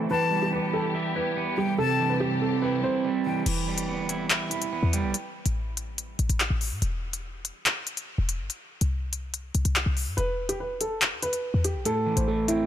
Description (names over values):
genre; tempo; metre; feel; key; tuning
hip hop, drill; 143 BPM; 4/4; half-time; E minor; A4 = 440 Hz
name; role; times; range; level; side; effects
electric guitar at the edge of break-up; accompaniment; 0.0-5.1, 11.9-12.7 s; A2 to E5; -27 LUFS; right 4 dB; spring reverb, low-pass filter
warm symphonic string section; sustained chords; 0.0-3.4 s; E3 to G4; -35 LUFS; left 3 dB; low-pass filter
dark baby grand piano; melody; 0.1-3.4, 10.2-12.7 s; E4 to C5; -29 LUFS; equal; low-pass filter, ping-pong delay
breathy bright jazz flute; second line; 0.1-3.5 s; G5 to A5; -32 LUFS; left 6 dB; ping-pong delay
short 808-style bass; bass; 3.5-12.7 s; E1 to A2; -28 LUFS; left 1 dB; none
drill drum kit; drums; 3.5-12.6 s; crash cymbal, handclaps, hi-hat; -28 LUFS; left 2 dB; none
room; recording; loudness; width
light reverb, studio reverb; none; -24 LUFS; side -10 dB against mid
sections
0.0-3.5 A section; 3.5-12.7 B section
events
break 3.5-11.9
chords
0.1 Em; 1.8 C; 3.5 Em; 5.1 N.C.; 8.5 C5; 10.2 E5; 11.9 Am